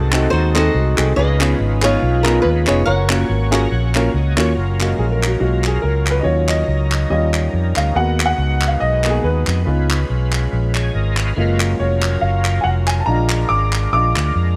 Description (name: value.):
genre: uptempo gospel.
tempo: 141 BPM.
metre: 4/4.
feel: swing 56% on 8ths.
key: F# major.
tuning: A4 = 440 Hz.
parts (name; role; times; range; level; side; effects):
flamenco guitar; melody; 0.0-4.1 s; B#3 to F#5; -22 LUFS; equal; none.
warm upright piano; accompaniment; 0.0-14.3 s; C#3 to D6; -22 LUFS; equal; none.
overdriven tonewheel organ; sustained chords; 0.0-14.6 s; F#3 to A#5; -28 LUFS; equal; chorus vibrato, slow rotary speaker.
fingered electric bass; bass; 0.0-14.6 s; E#1 to E#2; -20 LUFS; equal; none.
group handclap; percussion; 0.1-14.2 s; none; -27 LUFS; equal; none.
room: light reverb, small room ambience.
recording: none.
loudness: -17 LUFS.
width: mono.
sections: 0.0-4.6 A section; 4.6-14.6 B section.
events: tonewheel organ fill 3.3-4.6, 10.5-11.4; upright piano solo 4.6-14.6.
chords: 0.0 G#7b9; 1.2 C#9; 2.9 F#maj7; 6.3 D#m7; 7.1 D#7; 8.0 G#m7; 9.7 C#7; 11.4 F#maj7; 13.1 A#7.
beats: 0.32 0.75 | 1.17 1.59 2.02 2.44 | 2.86 3.29 3.71 4.13 | 4.56 4.98 5.41 5.83 | 6.26 6.69 7.11 7.54 | 7.96 8.39 8.81 9.24 | 9.67 10.09 10.52 10.94 | 11.37 11.79 12.22 12.65 | 13.07 13.50 13.92 14.35.